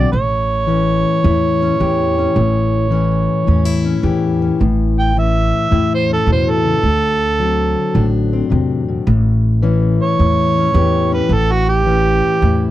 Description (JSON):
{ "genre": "acoustic country blues, solo or duo", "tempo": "107 BPM", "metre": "4/4", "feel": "swing 67% on 8ths", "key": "A mixolydian", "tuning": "A4 = 440 Hz", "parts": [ { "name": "overdriven harmonica", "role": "melody", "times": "0.0-12.7 s", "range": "F#4 to G5", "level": "-17 LUFS", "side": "right 4 dB", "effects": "none" }, { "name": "fingerpicked plugged-in steel-string acoustic guitar", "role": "accompaniment", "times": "0.0-12.7 s", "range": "A2 to G4", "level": "-17 LUFS", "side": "left 4 dB", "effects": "none" }, { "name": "upright bass", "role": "bass", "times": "0.1-12.7 s", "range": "A1 to E2", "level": "-17 LUFS", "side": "right 1 dB", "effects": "none" } ], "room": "little or no reverb", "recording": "dry, close 1970s-style studio recording", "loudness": "-13 LUFS", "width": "side -14 dB against mid", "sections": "0.0-4.6 A section; 4.6-12.7 B section", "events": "harmonica solo 4.6-12.7", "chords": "0.1 A7; 4.6 A; 6.8 D7; 9.1 A7" }